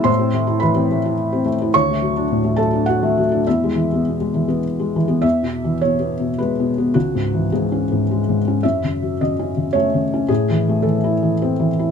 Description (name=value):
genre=neoclassical minimalist piano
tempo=108 BPM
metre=3/4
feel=rubato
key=E major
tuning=A4 = 439 Hz
part: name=felt-muted upright piano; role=solo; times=0.0-11.9 s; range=C#2 to F#6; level=-16 LUFS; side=left 1 dB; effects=none
room=light reverb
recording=close, detailed microphones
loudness=-16 LUFS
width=side -7 dB against mid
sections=0.0-5.2 A section; 5.2-11.9 B section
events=none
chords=0.1 Amadd9; 1.7 D; 3.5 E; 6.9 C#m; 8.6 F#m; 10.3 Am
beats=| 0.08 0.64 1.19 | 1.73 2.29 2.86 | 3.45 4.05 4.65 | 5.24 5.81 6.38 | 6.95 7.51 8.07 | 8.63 9.18 9.74 | 10.29 10.84 11.39